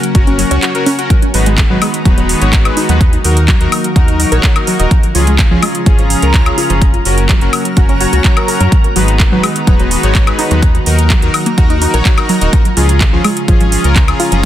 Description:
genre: progressive house.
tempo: 126 BPM.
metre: 4/4.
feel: straight.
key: G# dorian.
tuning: A4 = 441 Hz.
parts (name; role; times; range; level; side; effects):
airy breathy pad; sustained chords; 0.0-14.5 s; C#3 to F#4; -21 LUFS; equal; chorus, sidechain pumping.
house drum kit; drums; 0.0-14.4 s; handclaps, hi-hat, woodblock; -17 LUFS; equal; soft clipping on snare.
wide unison pluck; arpeggios; 0.1-14.4 s; E#3 to D#5; -18 LUFS; right 1 dB; sidechain pumping, digital delay.
soft supersaw; stabs; 0.1-14.4 s; G#3 to C#5; -17 LUFS; left 2 dB; sidechain pumping, digital delay.
round analog bass; bass; 0.1-14.5 s; D#1 to F#2; -14 LUFS; equal; tube saturation, sidechain pumping.
electronic kick drum; drums; 0.1-14.1 s; none; -10 LUFS; equal; none.
backwards swelling texture; texture; 1.9-14.5 s; A#5; -25 LUFS; right 2 dB; built-in reverb, sidechain pumping.
room: little or no reverb.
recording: dense, heavily limited modern master.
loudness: -9 LUFS.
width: side -12 dB against mid.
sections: 0.0-14.5 A section.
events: filter sweep on synth pluck 0.0-14.5; break 0.6-1.1.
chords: 0.0 F#; 1.1 G#m7; 3.0 D#m; 4.9 C#; 6.8 F#; 8.7 G#m7; 10.6 D#m; 12.5 C#.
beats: 0.15 0.63 | 1.10 1.58 2.05 2.53 | 3.01 3.48 3.96 4.43 | 4.91 5.39 5.86 6.34 | 6.82 7.29 7.77 8.24 | 8.72 9.20 9.67 10.15 | 10.63 11.10 11.58 12.05 | 12.53 13.01 13.48 13.96 | 14.44.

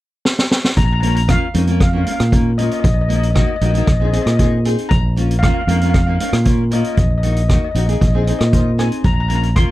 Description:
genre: calypso.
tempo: 116 BPM.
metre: 4/4.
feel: straight.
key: Bb minor.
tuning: A4 = 439 Hz.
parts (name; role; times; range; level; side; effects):
street-band drum kit; drums; 0.3-9.7 s; hi-hat, kick drum, rim click, snare drum; -17 LUFS; equal; none.
steel pan; melody; 0.8-9.7 s; Eb5 to C6; -23 LUFS; left 3 dB; none.
fingered electric bass; bass; 0.8-9.6 s; Bb1 to Bb2; -16 LUFS; equal; none.
nylon-string guitar; accompaniment; 1.0-9.7 s; Bb3 to Ab4; -23 LUFS; left 1 dB; double-tracked left and right.
room: little or no reverb.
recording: dry, close 1970s-style studio recording.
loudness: -13 LUFS.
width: side -16 dB against mid.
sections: 0.8-9.7 A section.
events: drum fill 0.2-0.8.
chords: 0.0 N.C.; 0.8 Bbm; 2.8 Ebm/Bb; 3.9 Abadd9/Bb; 4.9 Bbm; 7.0 Ebm/Bb; 8.0 Abadd9/Bb; 9.0 Bbm.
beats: 0.24 | 0.76 1.28 1.80 2.32 | 2.84 3.35 3.87 4.39 | 4.91 5.42 5.94 6.46 | 6.98 7.50 8.01 8.53 | 9.05 9.56.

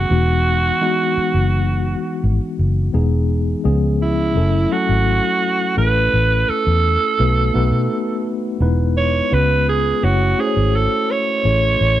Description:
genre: soul.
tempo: 85 BPM.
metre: 4/4.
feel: straight.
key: unclear.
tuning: A4 = 440 Hz.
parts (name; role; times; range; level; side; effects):
growling alto saxophone; melody; 0.0-12.0 s; E4 to C#5; -19 LUFS; right 4 dB; none.
mellow tine electric piano; accompaniment; 0.0-12.0 s; E3 to C#5; -21 LUFS; left 2 dB; fast stereo tremolo.
vintage muted fingered electric bass; bass; 0.0-12.0 s; E1 to B2; -17 LUFS; equal; none.
room: light reverb.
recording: none.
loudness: -15 LUFS.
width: side -13 dB against mid.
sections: 0.0-2.9 A section; 2.9-12.0 B section.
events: none.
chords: 0.1 Emaj9; 2.9 Emaj7; 3.6 C#7; 4.4 F#m7; 5.8 A; 7.2 B7; 8.6 Emaj7; 9.3 C#7; 10.0 F#m7; 11.5 Amaj7.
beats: | 0.10 0.81 1.52 2.23 | 2.94 3.65 4.36 5.07 | 5.78 6.49 7.19 7.90 | 8.61 9.32 10.03 10.74 | 11.45.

